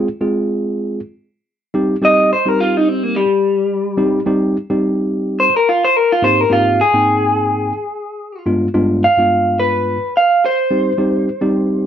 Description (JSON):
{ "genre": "blues", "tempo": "107 BPM", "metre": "4/4", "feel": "swing 56% on 16ths", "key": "C minor", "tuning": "A4 = 441 Hz", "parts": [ { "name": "mellow tine electric piano", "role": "accompaniment", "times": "0.0-11.9 s", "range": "G2 to G5", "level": "-16 LUFS", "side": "equal", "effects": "none" }, { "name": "electric guitar through a small old amp", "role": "melody", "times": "2.0-11.9 s", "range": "G3 to F5", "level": "-14 LUFS", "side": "equal", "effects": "slapback echo" } ], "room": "moderate studio reverb, RT60 0.6 s", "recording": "none", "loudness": "-13 LUFS", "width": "side -9 dB against mid", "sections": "0.0-11.9 A section", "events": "clean electric guitar solo 0.0-11.9", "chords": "0.0 Fm; 1.7 Cm; 6.2 Abmaj7; 8.5 G7b9; 10.7 Cm" }